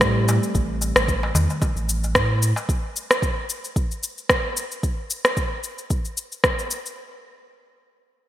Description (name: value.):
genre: organic downtempo.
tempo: 112 BPM.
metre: 4/4.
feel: swing 55% on 16ths.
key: unclear.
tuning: A4 = 440 Hz.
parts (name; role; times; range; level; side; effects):
round analog bass; bass; 0.0-2.5 s; A1 to A2; -22 LUFS; equal; none.
electronic kick drum; drums; 0.0-6.6 s; none; -25 LUFS; equal; small room ambience.
electronic rim click and shaker; drums; 0.0-7.0 s; none; -22 LUFS; equal; small room ambience, gated reverb.
darbuka; percussion; 0.3-2.7 s; none; -29 LUFS; left 1 dB; none.
room: light reverb, digital ambience.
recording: bright 1980s-style digital production.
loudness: -20 LUFS.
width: side -13 dB against mid.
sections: 0.0-7.0 A section.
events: none.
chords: none.